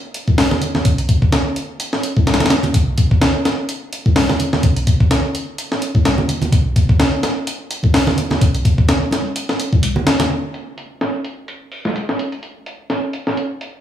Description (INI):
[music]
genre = breakbeat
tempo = 127 BPM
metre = 4/4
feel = swing 56% on 16ths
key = none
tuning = none
[part]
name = breakbeat sampler-style drum kit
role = drums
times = 0.1-13.7 s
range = hi-hat, kick drum, snare drum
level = -15 LUFS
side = equal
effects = low-pass filter on hats, low-pass filter on kick, low-pass filter on snare, low-pass filter on room
[part]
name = congas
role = percussion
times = 0.3-10.3 s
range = none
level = -22 LUFS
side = right 2 dB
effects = none
[sound]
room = light reverb, digital ambience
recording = studio reverb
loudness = -15 LUFS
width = side -10 dB against mid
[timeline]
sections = 0.0-10.3 A section; 10.3-13.8 B section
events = none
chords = none